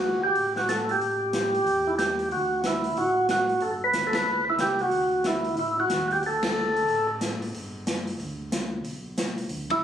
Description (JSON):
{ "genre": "soul jazz organ trio", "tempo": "184 BPM", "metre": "4/4", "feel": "swing 63% on 8ths", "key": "D mixolydian", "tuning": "A4 = 439 Hz", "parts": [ { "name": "percussive tonewheel organ", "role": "melody", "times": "0.0-7.1, 9.7-9.8 s", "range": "E4 to B4", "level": "-23 LUFS", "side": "right 1 dB", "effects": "slow rotary speaker, plate reverb" }, { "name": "mellow tonewheel organ", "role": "bass", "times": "0.0-9.8 s", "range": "G1 to E2", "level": "-37 LUFS", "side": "right 1 dB", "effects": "slow rotary speaker" }, { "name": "open jazz drum kit", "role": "drums", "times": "0.4-9.8 s", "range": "hi-hat, kick drum, ride cymbal, snare drum", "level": "-31 LUFS", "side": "left 1 dB", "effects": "none" } ], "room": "wet small room reverb, RT60 0.5 s", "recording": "recorded on a phone in the room, club reverb, compression", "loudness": "-23 LUFS", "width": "side -9 dB against mid", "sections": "0.0-2.3 A section; 2.3-9.8 A section", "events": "band accent 4.1, 6.4, 9.7", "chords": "0.0 D; 1.0 A5; 2.3 Dadd9; 3.6 G; 4.9 Dadd9; 7.5 G", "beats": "0.02 0.35 0.68 | 1.00 1.33 1.65 1.98 | 2.31 2.63 2.96 3.28 | 3.61 3.94 4.26 4.59 | 4.92 5.24 5.57 5.90 | 6.22 6.55 6.88 7.20 | 7.53 7.86 8.18 8.51 | 8.84 9.16 9.49 9.82" }